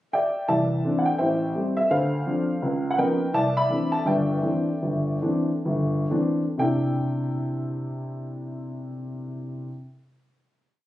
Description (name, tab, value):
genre	solo jazz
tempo	118-169 BPM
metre	4/4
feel	swing 63% on 8ths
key	C major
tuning	A4 = 439 Hz
part	warm upright piano	solo	0.1-9.7 s	G1 to B5	-23 LUFS	equal	none
room	light reverb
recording	recorded on a phone in the room, studio reverb, compression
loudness	-22 LUFS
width	side -14 dB against mid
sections	0.0-0.5 pickup bar; 0.5-6.6 A section; 6.6-10.7 final chord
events	slowing down 3.3-6.6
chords	0.5 C69; 1.2 Am7; 1.9 Dm7; 2.6 Db13; 3.3 C69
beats	0.12 | 0.48 0.83 1.19 1.54 | 1.90 2.25 2.61 2.97 | 3.32 3.68 4.04 4.42 | 4.81 5.21 5.64 6.09 | 6.58 7.09 7.60 8.11 | 8.62 9.12 9.63